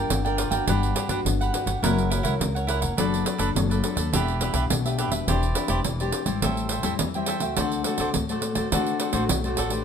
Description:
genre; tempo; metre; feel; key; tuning
samba and choro; 104 BPM; 4/4; straight; G major; A4 = 441 Hz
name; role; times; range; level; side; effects
cavaquinho; accompaniment; 0.0-9.8 s; D4 to G5; -29 LUFS; right 4 dB; none
nylon-string guitar; accompaniment; 0.0-9.8 s; A2 to B4; -28 LUFS; left 6 dB; none
upright bass; bass; 0.0-9.8 s; E1 to D3; -27 LUFS; equal; none
pandeiro; percussion; 0.1-9.8 s; none; -28 LUFS; right 4 dB; none
room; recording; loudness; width
moderate studio reverb, RT60 0.9 s; minimal, uncompressed stereo recording; -22 LUFS; side -7 dB against mid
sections
0.7-9.8 A section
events
none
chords
0.0 Gm7; 0.7 Gmaj7; 1.8 F#7; 3.0 Bm7/F#; 4.1 Em7; 5.3 Cadd9/E; 6.4 Am7; 7.6 D7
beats
0.10 | 0.67 1.25 1.82 2.40 | 2.98 3.55 4.13 4.70 | 5.28 5.85 6.42 7.00 | 7.57 8.15 8.72 9.29

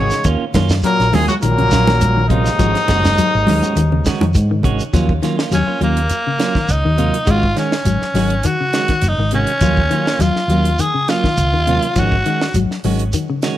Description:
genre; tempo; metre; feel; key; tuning
afrobeat; 102 BPM; 4/4; swing 54% on 16ths; Eb dorian; A4 = 440 Hz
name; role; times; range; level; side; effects
clear trumpet; melody; 0.0-4.3 s; Eb4 to Db5; -18 LUFS; left 2 dB; none
bright trombone; second line; 0.0-4.3 s; Ab2 to Ab3; -26 LUFS; right 4 dB; none
brilliant bass trombone; second line; 0.0-4.3 s; Eb2 to Db3; -28 LUFS; left 5 dB; none
semi-hollow electric guitar; arpeggios; 0.0-13.5 s; C3 to Ab3; -21 LUFS; left 5 dB; tape echo
clean electric guitar; stabs; 0.0-13.6 s; Eb3 to Gb4; -23 LUFS; right 6 dB; spring reverb
hollow-body short-scale fingered electric bass; bass; 0.0-13.1 s; Gb1 to Ab2; -18 LUFS; equal; none
tight funk drum kit; drums; 0.1-13.6 s; hi-hat, kick drum, snare drum; -21 LUFS; equal; none
shekere; percussion; 0.1-13.6 s; none; -23 LUFS; equal; none
congas; percussion; 0.6-4.8 s; none; -22 LUFS; right 2 dB; none
breathy tenor saxophone; melody; 5.5-12.6 s; Bb3 to Ab4; -19 LUFS; equal; none
room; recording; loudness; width
small room ambience; none; -13 LUFS; side -13 dB against mid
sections
0.0-4.9 A section; 4.9-13.6 B section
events
tenor saxophone solo 4.9-13.6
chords
0.3 Ebm9; 2.6 Ab7sus4; 4.9 Ebm9; 7.3 Ab7sus4; 9.6 Ebm9; 12.0 Ab7sus4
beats
| 0.26 0.84 1.42 2.01 | 2.59 3.17 3.76 4.34 | 4.93 5.51 6.10 6.68 | 7.27 7.86 8.44 9.03 | 9.61 10.20 10.79 11.37 | 11.96 12.54 13.13

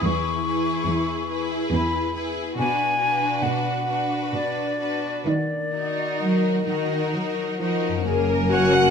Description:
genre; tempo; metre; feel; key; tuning
cinematic, emotional film score for orchestra; 64-72 BPM; 3/4; rubato; unclear; A4 = 440 Hz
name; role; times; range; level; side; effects
clear studio violin section; melody; 0.0-8.9 s; Bb4 to B4; -33 LUFS; left 4 dB; none
rich studio violin section; second line; 0.0-8.9 s; F#4 to F#5; -32 LUFS; left 1 dB; none
silver concert flute; second line; 0.0-8.9 s; D5 to Db6; -26 LUFS; left 1 dB; none
rich studio viola section; accompaniment; 0.0-8.9 s; A#3 to F#5; -29 LUFS; right 1 dB; none
concert harp; arpeggios; 0.0-8.9 s; F#2 to E5; -29 LUFS; left 11 dB; none
rich studio cello section; bass; 0.0-8.9 s; E2 to Gb3; -27 LUFS; right 3 dB; none
dark clarinet; second line; 8.1-8.9 s; A#4; -28 LUFS; left 1 dB; none
rich studio double bass section; bass; 8.1-8.9 s; F#1; -26 LUFS; right 6 dB; none
clear oboe; second line; 8.5-8.9 s; F#5; -27 LUFS; equal; none
mellow French horn section; sustained chords; 8.5-8.9 s; F#4; -18 LUFS; left 3 dB; none
room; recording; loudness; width
light reverb; close, detailed microphones; -21 LUFS; side -6 dB against mid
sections
0.0-8.1 A section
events
none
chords
0.0 E; 2.6 Bm; 5.3 Ebm; 8.1 F#add9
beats
| 0.04 0.88 1.73 | 2.59 3.45 4.35 | 5.27 6.21 7.14 | 8.07

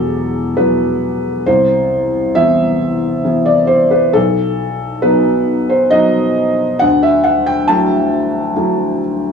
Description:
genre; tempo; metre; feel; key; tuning
neoclassical minimalist piano; 68 BPM; 3/4; rubato; unclear; A4 = 440 Hz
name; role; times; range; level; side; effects
felt-muted upright piano; solo; 0.0-9.3 s; E1 to A5; -12 LUFS; equal; none
room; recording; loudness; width
moderate studio reverb, RT60 0.6 s; band playing live in one room, small room ambience; -12 LUFS; side -6 dB against mid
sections
0.0-9.3 A section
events
none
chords
0.0 Emadd9; 1.5 Cmaj7; 4.1 B7; 6.8 Dadd9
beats
0.58 | 1.47 2.36 3.25 | 4.14 5.03 5.93 | 6.82 7.69 8.56

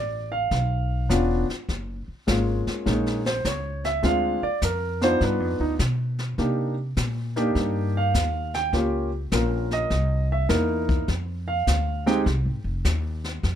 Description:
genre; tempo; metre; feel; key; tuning
jazz piano trio; 102 BPM; 4/4; swing 67% on 8ths; unclear; A4 = 442 Hz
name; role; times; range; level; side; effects
warm grand piano; melody; 0.0-12.2 s; Ab3 to G5; -24 LUFS; right 1 dB; none
upright bass; bass; 0.0-13.6 s; Fb1 to C3; -26 LUFS; equal; none
jazz brush drum kit; drums; 0.5-13.6 s; brushed snare drum, hi-hat, kick drum, snare drum; -30 LUFS; left 2 dB; none
room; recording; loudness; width
light reverb; close, detailed microphones; -22 LUFS; side -9 dB against mid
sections
0.0-13.6 A section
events
none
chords
0.0 G7#11 (rootless); 1.7 Gbmaj9; 4.0 Dm7b5; 5.2 G7b13; 6.4 Cm9; 8.7 Gm7b5; 9.9 C7#9; 11.1 F7(no3)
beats
0.50 1.09 | 1.68 2.27 2.85 3.44 | 4.03 4.61 5.20 5.79 | 6.38 6.96 7.55 8.14 | 8.72 9.31 9.90 10.49 | 11.08 11.66 12.25 12.84 | 13.43

